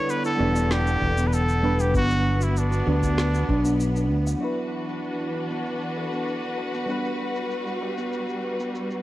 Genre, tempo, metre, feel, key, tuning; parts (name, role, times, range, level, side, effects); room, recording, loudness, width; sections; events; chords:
sunset chillout; 97 BPM; 4/4; straight; D major; A4 = 438 Hz
trumpet with straight mute; melody; 0.0-3.8 s; D4 to C#5; -27 LUFS; equal; digital delay
soft electric-piano-like synth keys; accompaniment; 0.0-9.0 s; F#3 to F#5; -30 LUFS; equal; chorus, auto-pan
clear studio string section; sustained chords; 0.0-9.0 s; D3 to B4; -31 LUFS; left 1 dB
buzzing kalimba; arpeggios; 0.0-8.7 s; B3 to F#5; -29 LUFS; right 2 dB; vintage 12-bit sampler grit, low-pass filter, digital delay
electronic shaker and snare drum; drums; 0.1-9.0 s; -34 LUFS; equal; low-pass filter on perc, small room ambience, low-pass filter on snare
fretless electric bass; bass; 0.4-4.3 s; E1 to D2; -23 LUFS; equal; wide subtle chorus
electronic kick drum; drums; 1.0-3.6 s; -27 LUFS; equal; overdrive, small room ambience
light reverb, small room ambience; worn, warbling old tape, cassette tape, warbly pitch drift; -22 LUFS; side -15 dB against mid
0.0-4.4 A section; 4.4-9.0 B section
filter sweep on kalimba 4.4-9.0
0.0 A9sus4; 1.9 Gmaj7; 4.4 D69; 6.9 Gmaj7